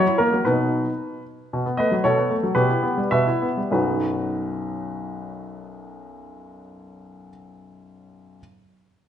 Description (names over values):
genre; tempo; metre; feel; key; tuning
classical-period piano sonatina; 96-117 BPM; 2/4; rubato; B major; A4 = 444 Hz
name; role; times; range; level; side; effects
clear baby grand piano; solo; 0.0-8.4 s; B1 to E5; -21 LUFS; equal; none
room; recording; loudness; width
wet recital hall reverb, RT60 1.5 s; nothing above 11.0 kHz; -20 LUFS; side -9 dB against mid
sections
0.0-1.5 A section; 1.5-3.7 B section; 3.7-6.1 C section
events
slowing down 1.0-3.7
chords
0.5 B; 1.5 B5; 2.6 Em/B; 3.7 B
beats
| 0.46 0.99 | 1.52 2.04 | 2.56 3.13 | 3.74 4.33 | 4.93 5.53